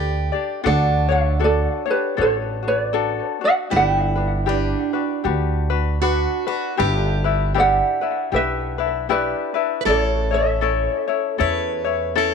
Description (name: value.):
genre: Hawaiian.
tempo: 78 BPM.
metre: 4/4.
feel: swing 60% on 8ths.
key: D major.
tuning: A4 = 440 Hz.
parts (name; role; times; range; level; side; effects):
ukulele; melody; 0.0-11.4 s; G4 to G5; -21 LUFS; right 2 dB; tape echo.
picked plugged-in steel-string acoustic guitar; second line; 0.0-12.3 s; D4 to B4; -27 LUFS; right 13 dB; none.
ukulele; accompaniment; 0.0-12.3 s; C#4 to D5; -23 LUFS; left 13 dB; none.
upright bass; bass; 0.0-12.3 s; G1 to E2; -23 LUFS; right 1 dB; none.
room: light reverb.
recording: 1960s-style stereo with parts hard left and right.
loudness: -18 LUFS.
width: side -6 dB against mid.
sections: 0.7-12.3 A section.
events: none.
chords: 0.0 G; 0.7 Dmaj7; 3.7 Gmaj7; 6.8 Em7/G; 9.9 A.